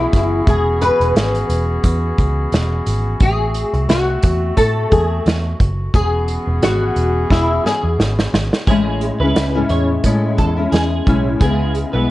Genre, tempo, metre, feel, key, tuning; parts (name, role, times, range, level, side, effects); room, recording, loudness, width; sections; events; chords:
indie pop, bedroom pop; 88 BPM; 4/4; swing 55% on 16ths; A4 = 441 Hz
nylon-string guitar; accompaniment; 0.0-12.1 s; A2 to B4; -18 LUFS; left 2 dB; ensemble chorus, warbly pitch drift
warm woodwind section; sustained chords; 0.0-8.7 s; E3 to G#4; -23 LUFS; equal
vintage muted picked electric bass; bass; 0.0-12.1 s; E1 to A2; -19 LUFS; equal
unplugged drum kit; drums; 0.1-11.9 s; hi-hat, kick drum, snare drum; -17 LUFS; right 1 dB
electric guitar through a small old amp; second line; 8.7-12.1 s; G#4 to C#5; -24 LUFS; right 2 dB; ensemble chorus, slapback echo
light reverb, studio reverb; worn, warbling old tape, cassette tape, warbly pitch drift, nothing above 11.0 kHz; -14 LUFS; side -16 dB against mid
0.0-8.7 A section; 8.7-12.1 B section
nylon-string guitar solo 0.0-8.7; drum fill 7.3-8.7
0.0 E6; 3.2 Am6; 5.9 E6; 8.7 Amaj7; 11.4 C#m7